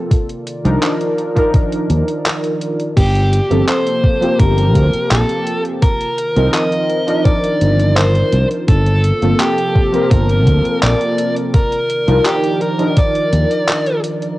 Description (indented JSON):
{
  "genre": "vaporwave",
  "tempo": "84 BPM",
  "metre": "4/4",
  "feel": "straight",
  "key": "unclear",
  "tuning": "A4 = 440 Hz",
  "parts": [
    { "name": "warbly lo-fi synth keys", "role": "accompaniment", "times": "0.0-14.4 s", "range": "F3 to Bb4", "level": "-18 LUFS", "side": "equal", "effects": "wide subtle chorus, cassette tape, tape echo" },
    { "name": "warbly tape-like pad", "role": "sustained chords", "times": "0.0-14.4 s", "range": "C3 to A5", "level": "-25 LUFS", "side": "equal", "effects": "chorus, built-in reverb, cassette tape" },
    { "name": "detuned 8-bit digital drum machine", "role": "drums", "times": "0.1-14.4 s", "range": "crash cymbal, handclaps, hi-hat", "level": "-22 LUFS", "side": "equal", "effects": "none" },
    { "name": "electronic kick drum", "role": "drums", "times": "0.1-13.1 s", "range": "none", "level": "-14 LUFS", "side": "equal", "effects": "none" },
    { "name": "fingered electric bass", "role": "bass", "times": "0.7-13.4 s", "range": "G1 to Eb2", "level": "-14 LUFS", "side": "equal", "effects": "none" },
    { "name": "dark smooth lead guitar", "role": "melody", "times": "3.0-14.0 s", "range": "G4 to Eb5", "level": "-18 LUFS", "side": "equal", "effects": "overdrive, cassette tape, tape echo" }
  ],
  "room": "light reverb",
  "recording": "home recording on cassette",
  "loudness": "-12 LUFS",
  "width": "side -17 dB against mid",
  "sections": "0.0-14.4 A section",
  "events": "none",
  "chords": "0.1 Cm11 (rootless); 3.0 Gm11; 5.8 Cm11; 8.7 Gm11; 11.5 Cm11 (rootless)"
}